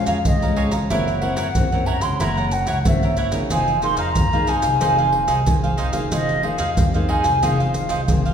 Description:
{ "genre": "samba and choro", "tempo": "92 BPM", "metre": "4/4", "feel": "straight", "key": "F minor", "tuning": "A4 = 440 Hz", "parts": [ { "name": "baroque flute", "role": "melody", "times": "0.0-8.3 s", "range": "Eb5 to C6", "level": "-22 LUFS", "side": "right 1 dB", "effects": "none" }, { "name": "cavaquinho", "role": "accompaniment", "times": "0.0-8.3 s", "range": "Eb4 to Bb5", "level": "-27 LUFS", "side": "right 3 dB", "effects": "none" }, { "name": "nylon-string guitar", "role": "accompaniment", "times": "0.0-8.3 s", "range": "F2 to Ab4", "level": "-27 LUFS", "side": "left 3 dB", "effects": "none" }, { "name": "upright bass", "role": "bass", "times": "0.1-8.3 s", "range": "F1 to Gb2", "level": "-25 LUFS", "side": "equal", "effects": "none" }, { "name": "maracas, pandeiro and surdo", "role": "percussion", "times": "0.1-8.3 s", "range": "none", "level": "-22 LUFS", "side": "equal", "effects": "none" } ], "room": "wet recital hall reverb, RT60 1.5 s", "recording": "recorded in a church or concert hall", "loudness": "-17 LUFS", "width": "side -8 dB against mid", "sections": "0.0-8.3 A section", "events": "none", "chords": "0.0 Bbm7; 0.9 Gb7#11; 3.5 Fm7" }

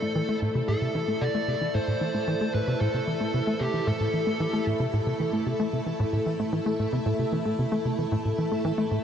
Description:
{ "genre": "ambient, sequencer-driven space music", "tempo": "113 BPM", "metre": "4/4", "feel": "straight", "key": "A minor", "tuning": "A4 = 440 Hz", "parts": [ { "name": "fuzz lead guitar", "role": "melody", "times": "0.0-4.6 s", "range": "G4 to D5", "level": "-32 LUFS", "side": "equal", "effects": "distortion, shimmer reverb, tape echo" }, { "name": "string machine, full ensemble", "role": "sustained chords", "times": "0.0-9.0 s", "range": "A3 to A4", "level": "-30 LUFS", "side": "equal", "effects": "ensemble chorus, shimmer reverb" }, { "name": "tight sequencer bass", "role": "riff", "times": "0.0-9.0 s", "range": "A2 to A3", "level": "-27 LUFS", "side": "equal", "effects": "analog chorus, tape echo" } ], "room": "wet huge ambient reverb, RT60 8.8 s", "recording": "dreamy mix soaked in reverb, cassette tape", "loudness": "-24 LUFS", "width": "side -8 dB against mid", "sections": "0.0-9.0 A section", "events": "none", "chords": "0.0 Am" }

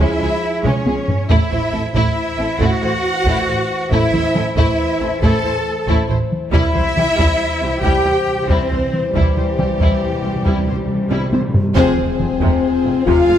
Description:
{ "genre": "cinematic, epic orchestral film score", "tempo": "92 BPM (dotted quarters)", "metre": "12/8", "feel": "straight", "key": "unclear", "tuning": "A4 = 440 Hz", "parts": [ { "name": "warm symphonic violin section", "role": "melody", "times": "0.0-13.4 s", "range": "Db4 to C5", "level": "-26 LUFS", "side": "left 2 dB", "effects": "none" }, { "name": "warm symphonic violin section", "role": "second line", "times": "0.0-13.4 s", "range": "G4 to A5", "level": "-24 LUFS", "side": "equal", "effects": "none" }, { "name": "rich symphonic viola section", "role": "accompaniment", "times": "0.0-13.4 s", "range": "C3 to F4", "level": "-26 LUFS", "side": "right 2 dB", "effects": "none" }, { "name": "mellow French horn section", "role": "sustained chords", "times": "0.0-13.4 s", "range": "E3 to C5", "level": "-21 LUFS", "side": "left 4 dB", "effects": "none" }, { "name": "clear symphonic double bass section", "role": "bass", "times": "0.0-13.4 s", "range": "F1 to Db2", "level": "-23 LUFS", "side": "right 3 dB", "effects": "none" }, { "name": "rich symphonic cello section", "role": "bass", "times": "0.0-13.4 s", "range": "F2 to A4", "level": "-22 LUFS", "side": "right 1 dB", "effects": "none" }, { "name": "taiko ensemble", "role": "drums", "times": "0.6-13.4 s", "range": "none", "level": "-19 LUFS", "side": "equal", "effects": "none" }, { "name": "timpani", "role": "percussion", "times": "6.5-11.7 s", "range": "C3", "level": "-26 LUFS", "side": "equal", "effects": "none" }, { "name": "mellow hollow silver concert flute", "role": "second line", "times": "11.8-13.4 s", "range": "C5 to F5", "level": "-28 LUFS", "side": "equal", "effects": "none" }, { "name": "impact", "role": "sound effects", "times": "11.8-13.4 s", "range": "none", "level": "-32 LUFS", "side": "equal", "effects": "none" } ], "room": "moderate scoring stage reverb, RT60 1.9 s", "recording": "close, detailed microphones", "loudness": "-14 LUFS", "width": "side -10 dB against mid", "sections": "0.0-11.8 A section; 11.8-13.4 B section", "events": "drum fill 0.6-1.3, 11.1-11.8; timpani fill 6.5-11.8; band accent 11.8-12.2; impact 11.8-13.4", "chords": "0.0 Db; 1.3 Am; 6.5 C; 11.8 Fm" }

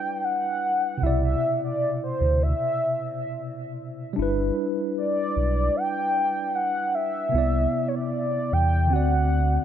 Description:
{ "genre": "contemporary R&B", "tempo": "76 BPM", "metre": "4/4", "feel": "swing 54% on 16ths", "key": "G major", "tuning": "A4 = 439 Hz", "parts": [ { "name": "mellow horn-like synth lead", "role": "melody", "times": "0.0-9.6 s", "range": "C5 to G5", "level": "-25 LUFS", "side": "equal", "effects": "chorus, dub echo" }, { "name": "mellow tine electric piano", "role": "accompaniment", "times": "0.0-9.6 s", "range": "B2 to D5", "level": "-28 LUFS", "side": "left 1 dB", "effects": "medium stereo tremolo" }, { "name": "sub bass with octave", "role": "bass", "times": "1.0-9.6 s", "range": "G1 to E2", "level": "-23 LUFS", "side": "equal", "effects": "none" } ], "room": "light reverb", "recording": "echo-heavy mix", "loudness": "-22 LUFS", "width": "side -9 dB against mid", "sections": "0.0-9.6 A section", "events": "none", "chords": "0.0 G6; 1.0 Cmaj9; 4.2 G6; 7.3 Cmaj9; 8.9 D7" }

